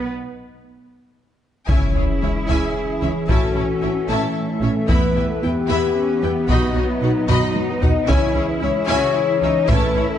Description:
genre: cinematic, hybrid orchestral and electronic film score.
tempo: 75 BPM (dotted quarters).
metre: 6/8.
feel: straight.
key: C# minor.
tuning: A4 = 440 Hz.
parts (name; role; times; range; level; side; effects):
rich studio viola section; accompaniment; 0.0-10.0 s; B3 to F#4; -28 LUFS; right 1 dB; none.
hollow soft pad; sustained chords; 0.0-10.2 s; E3 to E5; -26 LUFS; left 1 dB; chorus.
warm symphonic cello section; bass; 0.0-10.2 s; A3 to F#4; -27 LUFS; right 2 dB; none.
rich symphonic violin section; second line; 1.7-10.0 s; F#4 to B5; -28 LUFS; left 3 dB; none.
mellow French horn section; sustained chords; 1.7-10.2 s; C#4 to D#5; -23 LUFS; left 6 dB; none.
harp-like synth pluck; arpeggios; 1.7-10.1 s; C#3 to B4; -29 LUFS; right 2 dB; chorus, tape echo.
rich symphonic double bass section; bass; 1.7-10.0 s; A1 to E2; -25 LUFS; right 3 dB; none.
solo taiko drums; drums; 1.7-10.2 s; none; -21 LUFS; equal; none.
impact; sound effects; 1.7-3.3 s; none; -24 LUFS; left 1 dB; none.
room: moderate scoring stage reverb, RT60 1.7 s.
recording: nothing above 10.7 kHz.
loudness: -16 LUFS.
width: side -10 dB against mid.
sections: 0.0-1.7 A section; 1.7-10.2 B section.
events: break 0.1-1.7; impact 1.7-3.3; drum fill 7.3-8.1.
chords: 0.1 N.C.; 1.7 C#m; 3.3 A; 4.9 Em; 6.5 B; 8.1 C#m.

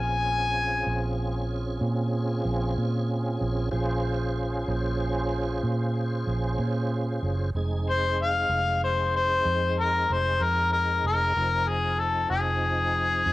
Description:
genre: slow blues.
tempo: 63 BPM (dotted quarters).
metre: 12/8.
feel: straight.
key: Bb minor.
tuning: A4 = 440 Hz.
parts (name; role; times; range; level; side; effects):
mellow harmonica; melody; 0.0-1.2, 7.9-13.3 s; Ab4 to Ab5; -24 LUFS; left 3 dB; overdrive, cassette tape.
tonewheel organ; sustained chords; 0.0-13.3 s; F3 to C5; -31 LUFS; right 1 dB; slow rotary speaker, overdrive, chorus vibrato, cassette tape.
vintage muted fingered electric bass; bass; 0.0-13.3 s; F1 to Bb2; -28 LUFS; right 1 dB; transformer saturation.
room: light reverb, studio reverb.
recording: home recording on cassette.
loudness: -24 LUFS.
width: side -17 dB against mid.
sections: 0.0-13.3 A section.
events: none.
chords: 0.0 Bbm7; 7.5 Fm7.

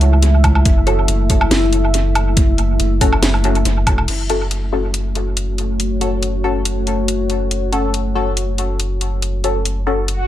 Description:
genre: deep dubstep.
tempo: 140 BPM.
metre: 4/4.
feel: swing 53% on 16ths, half-time.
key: F# minor.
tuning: A4 = 440 Hz.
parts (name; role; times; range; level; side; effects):
deep dark ambient pad; sustained chords; 0.0-10.3 s; A3 to E5; -22 LUFS; left 1 dB; chorus, built-in reverb.
saturated sub bass; bass; 0.0-10.3 s; F#1 to C#2; -17 LUFS; equal; tube saturation.
garage drum kit; drums; 0.0-10.2 s; crash cymbal, hi-hat, snare drum, woodblock; -20 LUFS; equal; studio ambience, dub echo.
electronic kick drum; drums; 0.4-4.0 s; none; -15 LUFS; equal; studio ambience.
filtered dub chord stab; stabs; 0.9-10.0 s; C#4 to A4; -23 LUFS; left 2 dB; phaser, analog chorus, dub echo.
swell; sound effects; 10.2-10.3 s; none; -22 LUFS; right 2 dB; none.
room: light reverb, digital ambience.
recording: echo-heavy mix.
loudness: -14 LUFS.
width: side -12 dB against mid.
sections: 0.0-4.1 A section; 4.1-10.3 B section.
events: filter sweep on synth stab 0.0-4.1; swell 10.2.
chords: 0.0 F#m.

